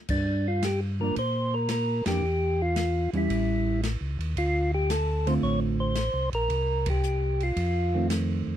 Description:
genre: soul jazz organ trio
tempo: 112 BPM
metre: 4/4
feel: swing 69% on 8ths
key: G dorian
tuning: A4 = 440 Hz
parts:
  - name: percussive tonewheel organ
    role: melody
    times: 0.1-8.1 s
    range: D4 to C#5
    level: -28 LUFS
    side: left 1 dB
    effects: slow rotary speaker
  - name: mellow tonewheel organ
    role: bass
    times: 0.1-8.6 s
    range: A1 to Bb2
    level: -28 LUFS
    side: equal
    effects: slow rotary speaker
  - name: open jazz drum kit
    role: drums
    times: 0.1-8.3 s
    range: crash cymbal, hi-hat, kick drum, ride cymbal, snare drum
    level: -36 LUFS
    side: left 1 dB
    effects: none
  - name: hollow-body jazz guitar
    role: accompaniment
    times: 1.0-8.6 s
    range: D3 to G4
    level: -28 LUFS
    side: right 3 dB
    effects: none
room: small room ambience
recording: dry, close 1970s-style studio recording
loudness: -24 LUFS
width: side -10 dB against mid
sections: 0.1-8.6 A section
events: band accent 2.0, 6.8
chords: 0.1 Gm7; 2.2 Em6; 3.3 A7; 4.4 Dm7; 6.5 C5; 7.6 F7

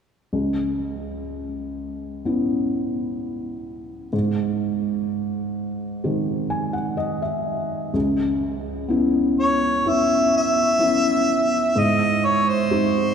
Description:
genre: acoustic folk-pop ballad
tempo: 63 BPM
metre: 4/4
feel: straight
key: C# minor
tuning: A4 = 440 Hz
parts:
  - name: felt-muted upright piano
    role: accompaniment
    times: 0.3-13.1 s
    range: C#2 to G#5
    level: -22 LUFS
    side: equal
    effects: none
  - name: mellow harmonica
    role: melody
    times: 9.4-13.1 s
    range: B#4 to E5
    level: -19 LUFS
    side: equal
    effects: none
room: wet cathedral reverb, RT60 4.7 s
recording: recorded in a church or concert hall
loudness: -20 LUFS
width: side -7 dB against mid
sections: 0.3-7.9 A section; 7.9-13.1 B section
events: none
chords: 0.3 C#m7; 4.1 G#; 7.9 C#m7; 11.8 G#

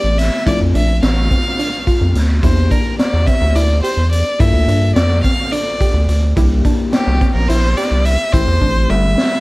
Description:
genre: progressive instrumental, band music in an uneven meter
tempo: 214 BPM (eighths)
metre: 7/8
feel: straight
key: unclear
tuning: A4 = 441 Hz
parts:
  - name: clear violin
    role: melody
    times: 0.0-9.4 s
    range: G4 to F5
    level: -20 LUFS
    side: equal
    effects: plate reverb
  - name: bell-like tine electric piano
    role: accompaniment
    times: 0.0-9.4 s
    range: A3 to A4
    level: -24 LUFS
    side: left 4 dB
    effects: phaser, plate reverb
  - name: soft round pluck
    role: arpeggios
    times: 0.0-9.3 s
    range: C4 to G4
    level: -24 LUFS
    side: right 1 dB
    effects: chorus, plate reverb
  - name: rubbery square bass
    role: bass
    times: 0.0-9.2 s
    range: G1 to G2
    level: -14 LUFS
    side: equal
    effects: none
  - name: raw garage drum kit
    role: drums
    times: 0.2-9.3 s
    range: hi-hat, kick drum, snare drum, toms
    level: -17 LUFS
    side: equal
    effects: none
room: light reverb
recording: dark, warm production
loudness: -12 LUFS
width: side -21 dB against mid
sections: 0.0-9.4 A section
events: drum fill 8.6-9.4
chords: 0.5 Bbmaj7; 2.4 Em7b5; 4.4 Gm7; 6.4 C7; 8.3 Am7

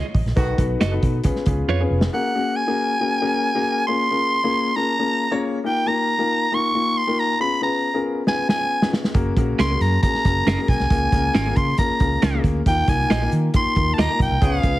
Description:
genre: uptempo 1960s-style soul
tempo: 137 BPM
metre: 4/4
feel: straight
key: Db major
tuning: A4 = 441 Hz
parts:
  - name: warm upright piano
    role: accompaniment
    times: 0.0-14.8 s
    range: Bb3 to G#5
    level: -24 LUFS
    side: left 4 dB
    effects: none
  - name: clean electric guitar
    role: stabs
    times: 0.0-1.8, 9.6-14.1 s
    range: Db4 to D#5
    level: -27 LUFS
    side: right 5 dB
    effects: none
  - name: vintage muted fingered electric bass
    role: bass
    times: 0.1-2.1, 9.1-14.8 s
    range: E#1 to Eb3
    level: -22 LUFS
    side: right 1 dB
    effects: none
  - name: warm soul drum kit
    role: drums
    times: 0.1-2.1, 8.3-14.7 s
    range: hi-hat, kick drum, snare drum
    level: -21 LUFS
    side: equal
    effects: none
  - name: warm horn section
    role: second line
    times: 0.4-0.7, 14.4-14.7 s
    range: D#3 to Ab4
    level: -28 LUFS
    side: right 1 dB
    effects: tube saturation
  - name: raspy soprano saxophone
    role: melody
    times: 2.1-14.8 s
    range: F5 to Db6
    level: -22 LUFS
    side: equal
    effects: none
room: light reverb, studio reverb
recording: heavily compressed radio sound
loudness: -18 LUFS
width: side -16 dB against mid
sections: 0.0-2.1 A section; 2.1-14.8 A section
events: band accent 0.4-2.1, 14.4-14.8; upright piano fill 1.2-2.1; drum fill 1.7-2.1, 8.3-9.2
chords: 0.4 B7; 1.2 C#7; 2.1 Gbadd9; 3.9 Db6; 5.6 Ebadd9; 7.4 Db7; 9.2 Gbadd9; 10.9 Db6; 12.7 Ebadd9

